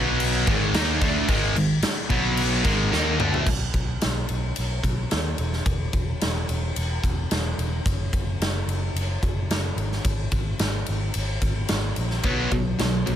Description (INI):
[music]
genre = hard rock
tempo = 109 BPM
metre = 4/4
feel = straight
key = G# minor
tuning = A4 = 436 Hz
[part]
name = distorted electric guitar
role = riff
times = 0.0-3.5, 12.2-13.2 s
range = G#2 to D#4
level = -22 LUFS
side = equal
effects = overdrive
[part]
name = picked electric bass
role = bass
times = 0.0-13.2 s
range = E1 to D#2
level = -26 LUFS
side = equal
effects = none
[part]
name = big rock drum kit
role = drums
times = 0.2-13.2 s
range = crash cymbal, kick drum, ride cymbal, snare drum, toms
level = -25 LUFS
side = equal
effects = none
[sound]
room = light reverb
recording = none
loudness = -22 LUFS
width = side -10 dB against mid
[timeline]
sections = 0.0-3.5 A section; 3.5-13.2 B section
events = drum fill 2.9-3.5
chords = 0.5 G#5; 2.1 B5; 2.7 G#5; 3.5 N.C.; 12.2 B5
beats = 0.20 0.74 | 1.29 1.83 2.38 2.93 | 3.47 4.02 4.57 5.12 | 5.66 6.21 6.76 7.31 | 7.86 8.41 8.96 9.51 | 10.05 10.60 11.15 11.70 | 12.25 12.80